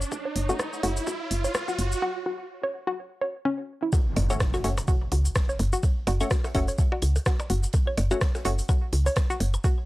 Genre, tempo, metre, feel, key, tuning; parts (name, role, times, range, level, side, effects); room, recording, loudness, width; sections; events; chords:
minimal techno; 126 BPM; 4/4; swing 57% on 16ths; F# minor; A4 = 440 Hz
woody FM bass; bass; 0.0-9.6 s; F#1 to C#2; -25 LUFS; equal; tube saturation, sidechain pumping
techno drum kit; drums; 0.0-9.8 s; hi-hat, rim click, shaker; -33 LUFS; equal
riser and impact; sound effects; 0.0-5.8 s; -33 LUFS; right 1 dB
swarming drone; texture; 0.0-2.0 s; C#5; -44 LUFS; right 2 dB; built-in reverb, sidechain pumping
electronic kick drum; drums; 0.1-9.8 s; -24 LUFS; equal; high-pass filter on kick, high-pass filter on room
hollow square pluck; riff; 0.3-9.7 s; C#4 to C#5; -30 LUFS; equal; chorus, sidechain pumping, analog delay
wavetable chord stab; stabs; 0.5-0.9, 4.3-8.5 s; A3 to F#4; -31 LUFS; left 2 dB; analog delay
huge arena drum kit; drums; 3.9-9.8 s; hi-hat, snare drum; -47 LUFS; right 3 dB; high-pass filter on hats, high-pass filter on snare, high-pass filter on room
percussion blips and claves; percussion; 3.9-9.8 s; -36 LUFS; equal; analog delay
little or no reverb; dry, gritty hardware recording; -23 LUFS; side -18 dB against mid
0.0-3.9 A section; 3.9-9.9 B section
build-up 0.0-3.9; riser 0.0-2.0; break 2.0-3.9; drop 3.9-9.9; impact 3.9-5.8
0.0 F#5